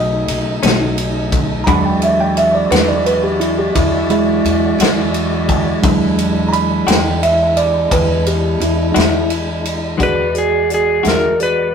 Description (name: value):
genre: slow blues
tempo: 58 BPM (dotted quarters)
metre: 12/8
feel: straight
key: E mixolydian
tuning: A4 = 440 Hz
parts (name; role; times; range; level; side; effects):
- bell-like tine electric piano; accompaniment; 0.0-11.7 s; F#3 to B5; -16 LUFS; right 2 dB; none
- bright horn section; sustained chords; 0.0-10.0 s; G#3 to E4; -30 LUFS; equal; none
- tonewheel organ; sustained chords; 0.0-11.7 s; C#3 to F#5; -23 LUFS; left 1 dB; overdrive, fast rotary speaker
- upright bass; bass; 0.0-11.7 s; B1 to E2; -21 LUFS; left 1 dB; none
- natural country drum kit; drums; 0.3-11.6 s; hi-hat, kick drum, ride cymbal, snare drum; -19 LUFS; equal; none
- clean electric guitar; accompaniment; 0.6-11.3 s; B2 to F#4; -20 LUFS; left 5 dB; tremolo
- clean lap steel guitar; melody; 10.0-11.7 s; G#4 to B4; -15 LUFS; equal; none
room: moderate studio reverb, RT60 0.6 s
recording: rough rehearsal-room recording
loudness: -12 LUFS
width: side -7 dB against mid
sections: 0.0-10.0 A section; 10.0-11.7 B section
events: tine electric piano solo 0.0-10.0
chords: 0.0 B9; 1.7 E9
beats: 0.63 | 1.67 2.71 3.75 4.79 | 5.83 6.87 7.92 8.96 | 10.01 11.06